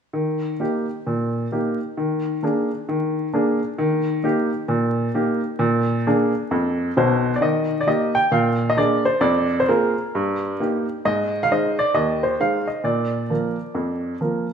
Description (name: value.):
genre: jazz, stride piano.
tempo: 132 BPM.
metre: 4/4.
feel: swing 62% on 8ths.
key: Eb major.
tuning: A4 = 440 Hz.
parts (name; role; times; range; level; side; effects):
clear upright piano; solo; 0.1-14.5 s; Cb2 to G5; -19 LUFS; equal; none.
room: wet stone room reverb, RT60 1.5 s.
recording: band playing live in one room, vinyl crackle.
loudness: -19 LUFS.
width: side -7 dB against mid.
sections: 0.1-7.4 A section; 7.4-14.5 B section.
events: none.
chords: 0.1 Eb; 2.0 Bb7/Eb; 3.8 Eb; 5.6 Bb7; 7.4 Eb; 8.3 Bb7; 9.2 Bb5/F; 10.1 Eb/G; 11.0 Ab; 12.8 Bb.